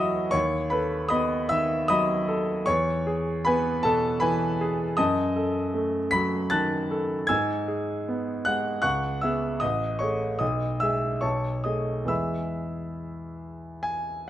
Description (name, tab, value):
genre	classical, romantic character piece for solo piano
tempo	67-80 BPM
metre	3/4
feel	rubato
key	E major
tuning	A4 = 440 Hz
part	clear concert grand piano	solo	0.0-14.3 s	A1 to B6	-24 LUFS	equal	none
room	light reverb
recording	close, detailed microphones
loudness	-23 LUFS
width	side -12 dB against mid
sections	0.0-14.3 A section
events	none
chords	0.3 B7/D#; 2.7 E; 5.0 D#dim/F#; 7.3 E/G#; 8.8 C#m7; 9.6 Amaj7; 10.4 E/B; 11.2 B13; 12.1 E